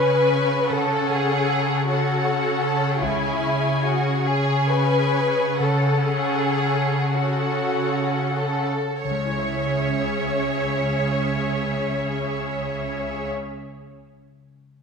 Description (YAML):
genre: classical, slow romantic movement for symphony orchestra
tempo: 29-52 BPM (dotted quarters)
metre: 6/8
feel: rubato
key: C# minor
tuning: A4 = 440 Hz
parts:
  - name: rich studio violin section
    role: melody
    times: 0.0-13.3 s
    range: E5 to G#5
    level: -31 LUFS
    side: left 3 dB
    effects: none
  - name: rich symphonic violin section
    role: second line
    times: 0.0-13.3 s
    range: E4 to C#5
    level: -24 LUFS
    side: left 2 dB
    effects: none
  - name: clear symphonic viola section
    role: accompaniment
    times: 0.0-13.3 s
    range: C#4 to B4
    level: -27 LUFS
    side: equal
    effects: none
  - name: concert harp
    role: arpeggios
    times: 0.0-13.6 s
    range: C#3 to C#6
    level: -28 LUFS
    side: left 2 dB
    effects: none
  - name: rich symphonic cello section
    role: bass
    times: 0.0-13.3 s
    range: C#3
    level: -27 LUFS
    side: right 2 dB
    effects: none
  - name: rich symphonic double bass section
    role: bass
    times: 3.0-3.8, 9.0-13.3 s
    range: C#2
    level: -32 LUFS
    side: right 5 dB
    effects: none
room: wet recital hall reverb, RT60 1.9 s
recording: minimal, uncompressed stereo recording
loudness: -20 LUFS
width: side -5 dB against mid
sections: 0.0-9.0 A section; 9.0-12.9 B section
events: slowing down 1.9-9.0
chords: 0.0 C#7(no3); 0.7 F#m/C#; 3.0 C#m; 5.6 F#m/C#; 9.0 C#m